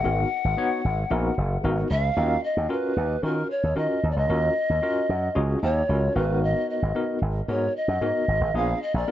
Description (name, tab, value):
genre	funk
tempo	113 BPM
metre	4/4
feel	straight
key	Eb minor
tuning	A4 = 440 Hz
part	mellow hollow polished pan flute	melody	0.0-9.1 s	Bb4 to Gb5	-26 LUFS	equal	none
part	tine electric piano	accompaniment	0.0-9.1 s	Cb4 to Db5	-29 LUFS	left 1 dB	medium tremolo
part	slap bass with an envelope filter	bass	0.0-9.0 s	Gb1 to Eb3	-25 LUFS	equal	none
room	studio ambience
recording	nothing above 7.7 kHz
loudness	-22 LUFS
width	side -12 dB against mid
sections	0.0-9.1 A section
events	none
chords	0.0 Abm9; 2.2 Ebm7; 6.2 Abm9; 8.5 Bb7b9